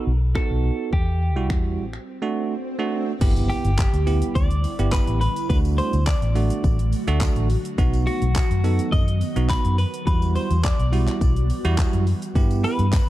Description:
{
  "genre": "dance-pop",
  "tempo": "105 BPM",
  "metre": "4/4",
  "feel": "straight",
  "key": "G major",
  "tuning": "A4 = 440 Hz",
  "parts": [
    { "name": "twelve-string electric guitar", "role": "melody", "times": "0.0-13.1 s", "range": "F#4 to D#5", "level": "-29 LUFS", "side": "equal", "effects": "none" },
    { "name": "bell-like tine electric piano", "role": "accompaniment", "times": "0.0-12.8 s", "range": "G3 to A4", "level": "-28 LUFS", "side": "right 5 dB", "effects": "sidechain pumping" },
    { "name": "vintage muted fingered electric bass", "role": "bass", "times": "0.1-13.0 s", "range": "G1 to G2", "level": "-21 LUFS", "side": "equal", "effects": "sidechain pumping" },
    { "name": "pop drum kit", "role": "drums", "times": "0.4-13.1 s", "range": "crash cymbal, finger snaps, handclaps, hi-hat, kick drum, shaker", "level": "-23 LUFS", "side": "equal", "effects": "none" },
    { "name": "swell and impact", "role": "sound effects", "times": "1.7-5.5 s", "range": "none", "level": "-33 LUFS", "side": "left 1 dB", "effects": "none" },
    { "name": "ethereal airy pad", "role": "sustained chords", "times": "4.2-13.1 s", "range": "D3 to F#4", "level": "-32 LUFS", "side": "right 1 dB", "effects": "ensemble chorus, built-in reverb, phaser, sidechain pumping" },
    { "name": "tambourine", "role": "percussion", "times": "3.2-13.1 s", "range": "none", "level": "-47 LUFS", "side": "left 10 dB", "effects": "none" }
  ],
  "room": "little or no reverb",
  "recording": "dark, warm production",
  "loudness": "-19 LUFS",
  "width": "side -15 dB against mid",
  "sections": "0.0-3.2 A section; 3.2-13.1 B section",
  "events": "swell 1.7-3.2; break 2.1-3.2; impact 3.2-5.5",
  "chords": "0.0 B; 0.9 Emadd9; 2.1 D; 3.2 G6; 5.5 D; 7.8 B; 10.1 Emadd9; 12.4 G6"
}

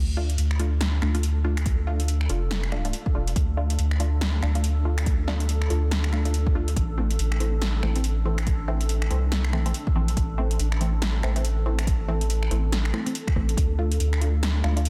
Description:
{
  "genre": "deep dubstep",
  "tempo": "141 BPM",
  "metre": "4/4",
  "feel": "swing 60% on 16ths, half-time",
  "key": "D minor",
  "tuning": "A4 = 440 Hz",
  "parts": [
    { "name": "granular cloud pad", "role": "sustained chords", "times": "1.2-14.9 s", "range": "D4 to A4", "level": "-39 LUFS", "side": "equal", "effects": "built-in reverb" },
    { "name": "soft dub sub bass", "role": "bass", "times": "0.0-14.9 s", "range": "E1 to D2", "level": "-26 LUFS", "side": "equal", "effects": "none" },
    { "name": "filtered dub chord stab", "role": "stabs", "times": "0.2-14.8 s", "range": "E3 to F4", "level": "-35 LUFS", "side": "equal", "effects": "phaser, dub echo" },
    { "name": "deep house drum kit", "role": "drums", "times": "0.3-14.9 s", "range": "finger snaps, hi-hat, snare drum", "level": "-34 LUFS", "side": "equal", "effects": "overdrive" },
    { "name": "electronic kick drum", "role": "drums", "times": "1.7-13.7 s", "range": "none", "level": "-26 LUFS", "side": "equal", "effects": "overdrive" }
  ],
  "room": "digital ambience",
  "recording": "dense, heavily limited modern master",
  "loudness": "-24 LUFS",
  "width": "mono",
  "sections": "0.0-14.9 A section",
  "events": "none",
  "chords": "0.0 Dm; 6.8 Am; 13.6 Dm"
}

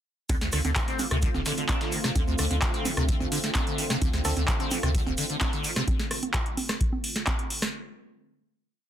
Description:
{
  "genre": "acid house",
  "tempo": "129 BPM",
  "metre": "4/4",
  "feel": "straight",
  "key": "D minor",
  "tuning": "A4 = 441 Hz",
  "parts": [
    { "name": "warm analog pad", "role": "sustained chords", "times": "0.3-7.7 s", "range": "D3 to F4", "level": "-35 LUFS", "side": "equal", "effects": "chorus, sidechain pumping" },
    { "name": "liquid acid bass", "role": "riff", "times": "0.3-5.8 s", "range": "D2 to D4", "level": "-31 LUFS", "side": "equal", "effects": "overdrive, lush chorus, vintage 12-bit sampler grit, ping-pong delay" },
    { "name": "warm sub bass", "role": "bass", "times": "0.3-5.1 s", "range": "D1 to D2", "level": "-28 LUFS", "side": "equal", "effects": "sidechain pumping" },
    { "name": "booming analog drum machine", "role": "drums", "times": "0.3-7.7 s", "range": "congas, handclaps, hi-hat, rim click, snare drum", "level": "-29 LUFS", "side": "right 1 dB", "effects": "overdrive" },
    { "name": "dusty soul sampler-style drum kit", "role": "drums", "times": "0.3-5.9 s", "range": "hi-hat, snare drum", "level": "-40 LUFS", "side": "left 1 dB", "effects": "none" },
    { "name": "electronic kick drum", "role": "drums", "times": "0.3-7.4 s", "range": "none", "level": "-28 LUFS", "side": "equal", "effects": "none" },
    { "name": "tube shaker", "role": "percussion", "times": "0.3-5.8 s", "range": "none", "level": "-39 LUFS", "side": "right 3 dB", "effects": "none" },
    { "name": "percussive organ stab", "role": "stabs", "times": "4.2-4.4 s", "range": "C4 to A4", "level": "-37 LUFS", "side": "right 2 dB", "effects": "chorus, ping-pong delay" }
  ],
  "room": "light reverb",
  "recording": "dense, heavily limited modern master",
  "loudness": "-24 LUFS",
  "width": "side -10 dB against mid",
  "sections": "0.3-7.7 drop",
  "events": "drop 0.3-7.7",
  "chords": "0.3 Dm7"
}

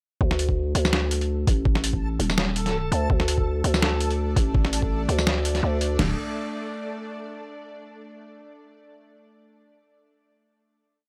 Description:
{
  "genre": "half-time drum and bass",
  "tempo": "166 BPM",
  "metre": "4/4",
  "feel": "swing 55% on 16ths, half-time",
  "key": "unclear",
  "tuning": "A4 = 440 Hz",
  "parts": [
    { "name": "growling 808-style bass", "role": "bass", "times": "0.2-6.2 s", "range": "D1 to D2", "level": "-26 LUFS", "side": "equal", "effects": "none" },
    { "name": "boom bap sampler-style drum kit", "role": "drums", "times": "0.2-6.1 s", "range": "crash cymbal, kick drum, snare drum, toms", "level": "-26 LUFS", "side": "equal", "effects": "overdrive" },
    { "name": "backwards swelling texture", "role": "texture", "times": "1.1-6.0 s", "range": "A4", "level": "-38 LUFS", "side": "equal", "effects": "built-in reverb" },
    { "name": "boom bap sampler-style drum kit", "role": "drums", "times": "0.3-5.9 s", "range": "hi-hat, snare drum, tambourine", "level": "-28 LUFS", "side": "equal", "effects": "overdrive" },
    { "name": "bowed-like drone", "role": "sustained chords", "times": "4.1-6.2 s", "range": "A3 to D5", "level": "-38 LUFS", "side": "equal", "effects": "built-in reverb, vintage 12-bit sampler grit, sidechain pumping" }
  ],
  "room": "little or no reverb",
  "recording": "dry, gritty hardware recording",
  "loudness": "-24 LUFS",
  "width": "mono",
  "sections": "0.2-6.0 drop; 6.0-7.4 final chord",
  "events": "drop 0.2-6.0",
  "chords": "0.2 D5"
}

